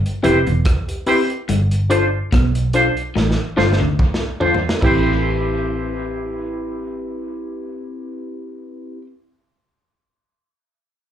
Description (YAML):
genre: lovers rock reggae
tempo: 72 BPM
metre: 4/4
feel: swing 55% on 16ths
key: A minor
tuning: A4 = 440 Hz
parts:
  - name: vintage muted fingered electric bass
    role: bass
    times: 0.0-9.0 s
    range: E1 to D2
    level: -20 LUFS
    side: right 1 dB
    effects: none
  - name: crunchy breakbeat drum kit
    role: drums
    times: 0.1-5.0 s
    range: crash cymbal, hi-hat, kick drum, rim click, snare drum, toms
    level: -21 LUFS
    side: right 1 dB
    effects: dub echo
  - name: mellow FM electric piano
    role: accompaniment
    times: 0.2-9.0 s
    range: C4 to C5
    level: -22 LUFS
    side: left 2 dB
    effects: chorus, slapback echo
  - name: electric guitar through a small old amp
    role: riff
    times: 0.2-3.9 s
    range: E2 to D3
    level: -24 LUFS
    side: left 3 dB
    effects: slapback echo
  - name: twangy electric guitar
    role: stabs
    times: 0.2-9.1 s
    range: D4 to C5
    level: -22 LUFS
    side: right 2 dB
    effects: tremolo, slapback echo
room: light reverb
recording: live gig heard through the venue's PA, club reverb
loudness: -16 LUFS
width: side -10 dB against mid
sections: 0.0-4.8 A section; 4.8-8.2 B section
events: drum fill 3.2-4.8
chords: 0.0 Am7 (rootless); 1.5 G7sus4; 4.8 Am7